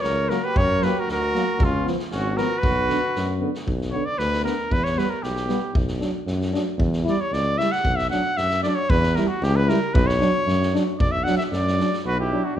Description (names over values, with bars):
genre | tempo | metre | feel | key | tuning
balkan folk, Balkan brass band | 115 BPM | 2/4 | straight | B harmonic minor | A4 = 441 Hz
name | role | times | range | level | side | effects
warm cornet | melody | 0.0-12.6 s | E#4 to F#5 | -24 LUFS | equal | none
warm flugelhorn | second line | 0.0-3.4, 12.1-12.6 s | C#4 to A#4 | -28 LUFS | right 2 dB | none
warm tuba | bass | 0.0-12.6 s | G#1 to F#2 | -25 LUFS | equal | none
street-band drum kit | percussion | 0.0-12.0 s | kick drum, snare drum | -26 LUFS | equal | none
mellow euphonium | accompaniment | 0.3-12.4 s | D3 to G3 | -29 LUFS | right 4 dB | none
warm trombone | accompaniment | 0.3-12.4 s | A#3 to E4 | -30 LUFS | left 4 dB | none
room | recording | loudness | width
moderate recital hall reverb, RT60 1.4 s | minimal, uncompressed stereo recording | -20 LUFS | side -10 dB against mid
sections
0.0-3.7 A section; 3.7-12.0 B section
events
cornet solo 3.7-12.0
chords
0.0 F#; 1.6 C#7; 2.6 Bm; 4.7 Em; 5.8 Bm; 6.8 Em; 7.8 Bm; 8.9 Em; 9.9 Bm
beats
0.03 | 0.55 1.07 | 1.59 2.11 | 2.63 3.15 | 3.67 4.19 | 4.71 5.23 | 5.76 6.28 | 6.80 7.33 | 7.85 8.37 | 8.90 9.42 | 9.95 10.47 | 10.99 11.52 | 12.05 12.57